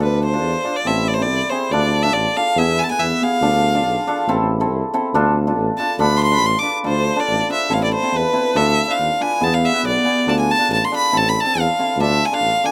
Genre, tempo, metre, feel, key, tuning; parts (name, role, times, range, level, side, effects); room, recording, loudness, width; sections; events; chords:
klezmer; 140 BPM; 2/4; straight; D dorian sharp4; A4 = 442 Hz
clear violin; melody; 0.0-12.7 s; B4 to D6; -21 LUFS; equal
cimbalom; accompaniment; 0.0-12.7 s; B3 to C5; -24 LUFS; equal
warm tuba; bass; 0.0-12.5 s; A1 to E2; -23 LUFS; equal
little or no reverb; -18 LUFS; mono
0.0-6.8 A section; 6.8-12.7 B section
violin solo 0.0-6.8
0.0 Dm; 0.9 Am; 1.7 Dm; 2.6 E; 3.4 Dm; 4.3 Am; 5.1 Dm; 7.7 Am; 8.6 Dm; 9.4 E; 10.3 Dm; 11.1 Am; 12.0 Dm